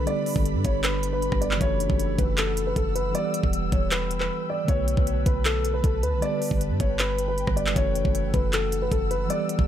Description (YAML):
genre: hip hop, trap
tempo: 156 BPM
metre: 4/4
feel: half-time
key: unclear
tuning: A4 = 441 Hz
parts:
  - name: dark concert grand piano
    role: melody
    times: 0.0-9.7 s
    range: A4 to D5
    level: -28 LUFS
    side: equal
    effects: none
  - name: mellow tine electric piano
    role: accompaniment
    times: 0.0-9.7 s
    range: D3 to B4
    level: -31 LUFS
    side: right 1 dB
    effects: fast stereo tremolo
  - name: ethereal airy pad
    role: sustained chords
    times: 0.0-9.7 s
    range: D4 to E6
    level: -34 LUFS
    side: left 2 dB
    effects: ensemble chorus, built-in reverb
  - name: clean 808-style bass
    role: bass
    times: 0.0-9.7 s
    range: E1 to G2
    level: -27 LUFS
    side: equal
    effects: none
  - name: trap drum kit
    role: drums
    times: 0.1-9.7 s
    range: handclaps, hi-hat, kick drum, rim click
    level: -26 LUFS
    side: equal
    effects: overdrive
room: digital ambience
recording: none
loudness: -22 LUFS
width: side -10 dB against mid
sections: 0.0-9.7 A section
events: break 4.3-4.7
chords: 0.1 G; 1.6 F#m7; 3.1 Em; 4.7 Bm7; 6.2 G; 7.8 F#m7